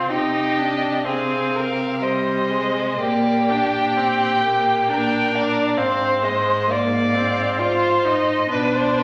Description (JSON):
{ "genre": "classical, slow romantic movement for string quartet", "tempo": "60-68 BPM", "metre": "3/4", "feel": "rubato", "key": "C minor", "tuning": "A4 = 440 Hz", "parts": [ { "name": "muted violin", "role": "melody", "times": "0.0-9.0 s", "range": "D5 to G5", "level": "-28 LUFS", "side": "equal", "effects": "none" }, { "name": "muted violin", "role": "second line", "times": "0.0-9.0 s", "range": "F4 to D5", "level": "-23 LUFS", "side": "equal", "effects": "none" }, { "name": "muted viola", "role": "accompaniment", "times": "0.0-9.0 s", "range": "G3 to F4", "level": "-26 LUFS", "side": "equal", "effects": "none" }, { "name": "muted cello", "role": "bass", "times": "0.0-9.0 s", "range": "Ab2 to C3", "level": "-30 LUFS", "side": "equal", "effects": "none" } ], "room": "wet recital hall reverb, RT60 1.3 s", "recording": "none", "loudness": "-20 LUFS", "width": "mono", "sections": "0.0-9.0 A section", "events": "none", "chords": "0.1 Cm; 3.0 Gm/Bb; 5.8 Fm/Ab; 8.5 G/B (rootless)" }